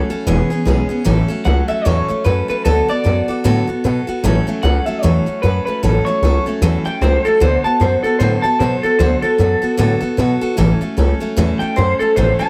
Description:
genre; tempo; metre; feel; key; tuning
rockabilly; 151 BPM; 4/4; swing 59% on 8ths; A major; A4 = 440 Hz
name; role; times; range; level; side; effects
electric guitar through a small old amp; melody; 0.0-12.5 s; A4 to A5; -20 LUFS; equal; subtle chorus, plate reverb, tape echo
picked steel-string acoustic guitar; accompaniment; 0.0-12.5 s; A2 to A4; -21 LUFS; equal; none
upright bass; bass; 0.1-12.4 s; E1 to B2; -18 LUFS; equal; none
room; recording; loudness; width
moderate studio ambience, RT60 0.5 s; none; -16 LUFS; mono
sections
0.0-1.1 A section; 1.1-12.5 B section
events
clean electric guitar solo 1.1-12.5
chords
0.3 E6; 1.1 A6; 2.7 D6; 4.2 A6; 7.4 D6; 10.6 A6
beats
0.26 0.66 | 1.06 1.46 1.86 2.25 | 2.65 3.05 3.45 3.84 | 4.24 4.64 5.03 5.43 | 5.83 6.22 6.62 7.02 | 7.41 7.81 8.21 8.60 | 9.00 9.39 9.79 10.19 | 10.58 10.98 11.37 11.77 | 12.16

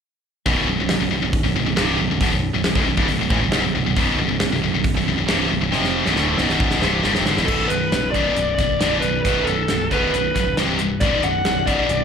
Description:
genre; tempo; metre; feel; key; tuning
hard rock; 136 BPM; 4/4; straight; B minor; A4 = 441 Hz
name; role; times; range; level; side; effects
heavy high-gain guitar; riff; 0.5-12.0 s; B1 to E#3; -22 LUFS; left 10 dB; distortion, slapback echo
tight distorted guitar; riff; 0.5-12.0 s; B1 to E#3; -24 LUFS; right 10 dB; distortion
growling picked electric bass; bass; 0.5-12.0 s; B0 to A1; -25 LUFS; equal; overdrive
gated 80s drum kit; drums; 0.5-12.0 s; crash cymbal, hi-hat, kick drum, snare drum; -24 LUFS; right 1 dB; none
bluesy overdriven lead guitar; melody; 7.5-12.0 s; A4 to F#5; -21 LUFS; left 1 dB; distortion, slapback echo, tape echo
room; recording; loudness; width
studio ambience; live gig heard through the venue's PA, club reverb; -17 LUFS; side -7 dB against mid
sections
0.5-7.5 A section; 7.5-12.0 B section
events
drum fill 5.7-7.5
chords
0.5 Bm; 10.6 C5; 11.0 Bm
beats
| 0.45 0.89 1.33 1.77 | 2.21 2.65 3.09 3.53 | 3.96 4.40 4.84 5.28 | 5.72 6.16 6.60 7.04 | 7.48 7.92 8.36 8.80 | 9.24 9.68 10.12 10.56 | 11.01 11.45 11.89

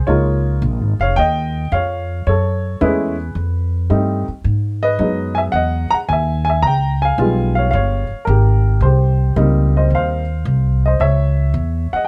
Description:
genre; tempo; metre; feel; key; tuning
jazz piano trio; 110 BPM; 4/4; swing 69% on 8ths; unclear; A4 = 440 Hz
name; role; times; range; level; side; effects
dark baby grand piano; melody; 0.0-12.1 s; F#3 to Bb5; -21 LUFS; equal; none
upright bass; bass; 0.0-12.0 s; F1 to G#2; -19 LUFS; equal; none
room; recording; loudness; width
light reverb; close, detailed microphones; -17 LUFS; mono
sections
0.0-12.1 A section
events
none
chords
0.1 Db69; 2.3 Gbm9; 3.4 F9; 4.4 Emaj9; 6.6 Db7#11; 8.8 Cm7; 11.0 Dbm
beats
| 0.07 0.62 1.17 1.72 | 2.26 2.81 3.36 3.90 | 4.45 5.00 5.54 6.09 | 6.63 7.18 7.73 8.27 | 8.82 9.37 9.91 10.46 | 11.01 11.56

